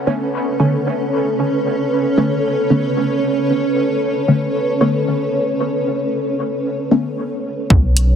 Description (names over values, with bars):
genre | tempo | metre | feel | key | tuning
dub techno | 114 BPM | 4/4 | straight | B minor | A4 = 440 Hz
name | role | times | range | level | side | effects
granular cloud pad | sustained chords | 0.0-7.7 s | C#4 to C#5 | -18 LUFS | equal | built-in reverb, sidechain pumping
filtered dub chord stab | stabs | 0.1-7.1 s | D3 to C#4 | -20 LUFS | equal | chorus, phaser, vintage 12-bit sampler grit, sidechain pumping, dub echo
warm sub bass | bass | 7.7-8.2 s | B1 | -14 LUFS | equal | sidechain pumping
electronic kick drum | drums | 7.7-7.8 s | none | -13 LUFS | equal | none
electronic hi-hat | drums | 8.0-8.1 s | none | -20 LUFS | right 1 dB | low-pass filter on hats
room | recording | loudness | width
moderate huge ambient reverb, RT60 5.2 s | dense, heavily limited modern master | -15 LUFS | side -8 dB against mid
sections
0.0-7.7 A section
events
filter sweep on synth stab 0.0-7.7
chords
0.0 Bm9